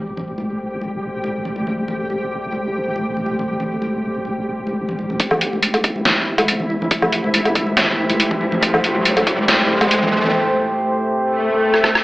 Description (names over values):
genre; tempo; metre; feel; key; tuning
deep dubstep; 140 BPM; 4/4; swing 53% on 16ths, half-time; A minor; A4 = 440 Hz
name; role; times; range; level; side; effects
deep dark ambient pad; sustained chords; 0.0-12.0 s; A3 to C5; -22 LUFS; equal; chorus, built-in reverb
deep soft wobble bass; bass; 0.0-10.3 s; A1 to E2; -30 LUFS; equal; chorus, high-pass filter
flickering grainy texture; texture; 0.0-10.3 s; E3 to G4; -26 LUFS; equal; built-in reverb
congas; percussion; 0.2-10.3 s; none; -26 LUFS; equal; dub echo
electronic kick drum; drums; 5.2-9.4 s; none; -20 LUFS; equal; high-pass filter on kick, studio reverb
trip hop sampler-style drum kit; drums; 5.2-12.0 s; hi-hat, rim click, snare drum, woodblock; -17 LUFS; equal; overdrive, high-pass filter on hats, low-pass filter on hats, studio reverb, high-pass filter on perc, low-pass filter on perc, high-pass filter on snare, low-pass filter on snare
riser and swell; sound effects; 7.2-12.0 s; none; -21 LUFS; equal; none
room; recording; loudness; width
wet echo chamber reverb, RT60 1.9 s, digital ambience; AM radio sound; -16 LUFS; side -19 dB against mid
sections
0.0-5.2 A section; 5.2-12.0 B section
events
build-up 5.2-12.0; riser 7.2-10.3; swell 11.3-12.0; drum fill 11.7-12.0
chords
0.0 Am7